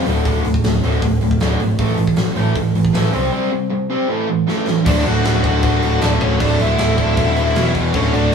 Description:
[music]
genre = punk rock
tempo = 156 BPM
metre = 4/4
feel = straight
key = D major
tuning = A4 = 441 Hz
[part]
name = distorted electric guitar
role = riff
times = 0.0-8.3 s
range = D2 to C4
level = -22 LUFS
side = right 9 dB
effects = overdrive
[part]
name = raw garage guitar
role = riff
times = 0.0-8.3 s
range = D2 to C4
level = -20 LUFS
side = left 4 dB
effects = overdrive
[part]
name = overdriven picked electric bass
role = bass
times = 0.1-8.3 s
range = D1 to A2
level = -18 LUFS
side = right 1 dB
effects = none
[part]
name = big rock drum kit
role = drums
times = 0.1-8.3 s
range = crash cymbal, hi-hat, kick drum, snare drum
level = -22 LUFS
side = equal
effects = none
[part]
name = scooped high-gain guitar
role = riff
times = 4.8-8.3 s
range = D2 to F#4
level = -25 LUFS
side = right 1 dB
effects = distortion
[part]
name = bluesy overdriven lead guitar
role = melody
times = 4.9-8.3 s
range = C#4 to F#5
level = -21 LUFS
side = left 1 dB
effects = distortion
[sound]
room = light reverb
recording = band playing live in one room, small room ambience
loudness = -14 LUFS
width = side -6 dB against mid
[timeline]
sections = 0.0-4.9 A section; 4.9-8.3 B section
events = break 3.3-4.9; drum fill 4.5-4.9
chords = 0.1 D5; 1.8 A5; 3.1 C5; 4.1 A5; 4.9 D; 7.6 E5

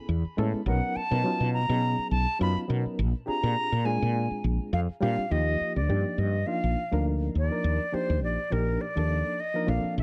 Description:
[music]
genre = electric jazz fusion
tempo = 103 BPM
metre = 4/4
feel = swing 55% on 16ths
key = Eb lydian from 5.3 s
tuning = A4 = 440 Hz
[part]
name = barky reed electric piano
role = accompaniment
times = 0.0-10.0 s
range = F3 to A#4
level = -34 LUFS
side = equal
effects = fast tremolo
[part]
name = woody fretless electric bass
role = bass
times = 0.1-10.0 s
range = A#1 to B2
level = -29 LUFS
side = equal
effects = none
[part]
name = reedy silver concert flute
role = melody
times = 0.7-10.0 s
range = Bb4 to B5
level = -33 LUFS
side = equal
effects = plate reverb
[sound]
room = light reverb, small room ambience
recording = dark, warm production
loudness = -27 LUFS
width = mono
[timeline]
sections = 0.0-5.3 A section; 5.3-10.0 B section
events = flute solo 0.0-5.3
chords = 0.0 Amaj9; 0.7 Bmaj9; 3.0 A#13; 5.3 Ebmaj9

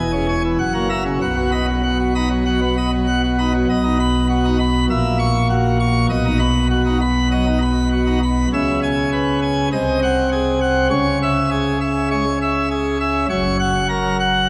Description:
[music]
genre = classical, organ toccata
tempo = 100 BPM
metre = 4/4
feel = straight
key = B major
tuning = A4 = 442 Hz
[part]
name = pipe organ, plenum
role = solo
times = 0.0-14.5 s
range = E1 to C#6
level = -18 LUFS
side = equal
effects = none
[sound]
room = wet church reverb, RT60 3.1 s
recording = none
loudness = -18 LUFS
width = mono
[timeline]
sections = 0.0-3.7 A section; 3.7-14.5 B section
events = none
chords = 0.0 C#m/E; 0.6 F#7; 1.2 B; 4.9 F#7/A#; 6.1 B; 8.5 C#m7; 9.7 G#7/B#; 10.9 C#m; 13.3 F#

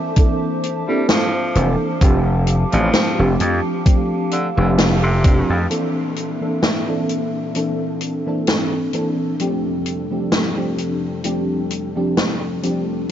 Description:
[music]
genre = vaporwave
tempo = 65 BPM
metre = 4/4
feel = swing 54% on 16ths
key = F major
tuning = A4 = 440 Hz
[part]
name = mellow FM electric piano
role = accompaniment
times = 0.0-13.1 s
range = E3 to A4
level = -21 LUFS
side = equal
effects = ensemble chorus, analog delay
[part]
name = warbly tape-like pad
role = sustained chords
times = 0.0-13.1 s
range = F2 to D6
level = -27 LUFS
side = left 1 dB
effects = chorus, built-in reverb
[part]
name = electronic kick drum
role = drums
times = 0.2-5.4 s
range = none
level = -14 LUFS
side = equal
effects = none
[part]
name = open jazz drum kit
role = drums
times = 0.2-12.8 s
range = hi-hat, snare drum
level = -21 LUFS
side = equal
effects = gated reverb
[part]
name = breathy tenor saxophone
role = melody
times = 0.9-5.7 s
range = C3 to G3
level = -26 LUFS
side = equal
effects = tape echo
[part]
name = gritty slap bass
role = bass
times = 1.6-5.7 s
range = F1 to F2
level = -17 LUFS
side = equal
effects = overdrive
[sound]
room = light reverb, small room ambience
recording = nothing above 7.6 kHz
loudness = -16 LUFS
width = side -10 dB against mid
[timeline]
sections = 0.0-5.7 A section; 5.7-13.1 B section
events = band accent 4.8-5.2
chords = 0.0 Bbmaj9#11; 2.0 F69; 5.7 Bbmaj9#11; 9.4 F69

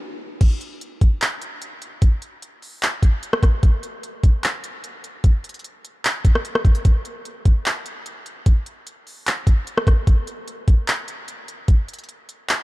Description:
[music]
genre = hip hop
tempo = 149 BPM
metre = 4/4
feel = half-time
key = none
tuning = none
[part]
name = trap drum kit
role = drums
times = 0.4-12.6 s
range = crash cymbal, handclaps, hi-hat, kick drum, rim click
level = -18 LUFS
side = equal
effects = none
[sound]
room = little or no reverb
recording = dark, warm production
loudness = -18 LUFS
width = side -20 dB against mid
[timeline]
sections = 0.4-12.6 A section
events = stop 0.0-0.4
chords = none

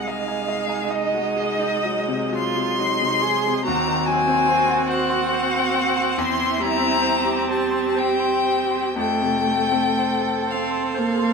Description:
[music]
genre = classical, slow romantic movement for piano quartet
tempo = 39-49 BPM (dotted quarters)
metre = 12/8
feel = rubato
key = unclear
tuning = A4 = 440 Hz
[part]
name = rich violin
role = melody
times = 0.0-11.3 s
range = Eb5 to C6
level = -22 LUFS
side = left 4 dB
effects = none
[part]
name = rich cello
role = second line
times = 0.0-11.3 s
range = Eb4 to A4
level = -26 LUFS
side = right 7 dB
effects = none
[part]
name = bright concert grand piano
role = accompaniment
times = 0.0-11.3 s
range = C2 to C6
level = -25 LUFS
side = left 3 dB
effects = none
[part]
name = rich viola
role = accompaniment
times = 0.0-11.3 s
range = Ab3 to C4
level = -26 LUFS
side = right 4 dB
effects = none
[sound]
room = moderate stone room reverb, RT60 1.2 s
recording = minimal, uncompressed stereo recording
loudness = -19 LUFS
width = side -5 dB against mid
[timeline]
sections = 0.0-11.3 A section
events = none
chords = 0.0 Ab7/C; 3.7 Cdim/Eb; 6.2 C7/E; 9.0 F

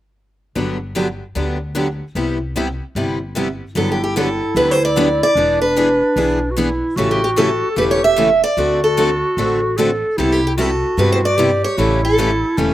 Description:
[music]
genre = acoustic string swing (jazz manouche)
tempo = 150 BPM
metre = 4/4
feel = swing 63% on 8ths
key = G major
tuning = A4 = 440 Hz
[part]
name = picked steel-string acoustic guitar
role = accompaniment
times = 0.6-12.7 s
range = C3 to A4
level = -21 LUFS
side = left 4 dB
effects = slapback echo
[part]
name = picked steel-string acoustic guitar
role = accompaniment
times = 0.6-12.7 s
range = C3 to B4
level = -24 LUFS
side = right 4 dB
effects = none
[part]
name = upright bass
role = bass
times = 0.6-12.7 s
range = E1 to G2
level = -24 LUFS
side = left 1 dB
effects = none
[part]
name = picked steel-string acoustic guitar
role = melody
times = 3.8-12.7 s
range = G4 to E5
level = -17 LUFS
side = right 1 dB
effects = none
[part]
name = warm clarinet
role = second line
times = 3.8-12.7 s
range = C#4 to A4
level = -20 LUFS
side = right 1 dB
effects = slapback echo
[sound]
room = little or no reverb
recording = recorded outdoors, with no room sound, faint mains hum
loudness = -15 LUFS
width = side -13 dB against mid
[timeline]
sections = 0.5-3.8 A section; 3.8-12.7 B section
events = none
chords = 0.5 Gmaj7; 2.1 Cmaj7; 3.8 Gmaj7; 5.4 E7; 7.0 A7; 8.6 D7; 10.2 Cmaj7; 11.8 A7

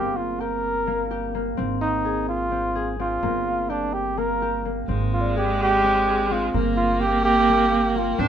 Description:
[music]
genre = contemporary instrumental, chamber music in an uneven meter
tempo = 255 BPM (eighths)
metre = 7/8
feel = straight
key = G phrygian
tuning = A4 = 439 Hz
[part]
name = breathy flugelhorn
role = melody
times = 0.0-8.2 s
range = D4 to Bb4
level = -22 LUFS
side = right 1 dB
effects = none
[part]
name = concert harp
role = arpeggios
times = 0.0-8.3 s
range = Bb3 to Ab4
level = -27 LUFS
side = left 3 dB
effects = none
[part]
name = upright bass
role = bass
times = 0.0-8.3 s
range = G1 to Ab1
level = -29 LUFS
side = right 1 dB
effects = none
[part]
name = clear viola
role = second line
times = 4.9-8.3 s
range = Ab3 to D4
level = -24 LUFS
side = right 2 dB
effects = none
[part]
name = large celesta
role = texture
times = 5.2-8.3 s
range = D5 to G5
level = -32 LUFS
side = left 2 dB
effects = none
[sound]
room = moderate studio ambience, RT60 0.5 s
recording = minimal, uncompressed stereo recording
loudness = -20 LUFS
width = side -9 dB against mid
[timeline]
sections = 0.0-8.3 A section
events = none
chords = 0.0 Gm; 1.6 Ab; 3.2 Gm7; 4.9 Abmaj7; 6.5 Gm

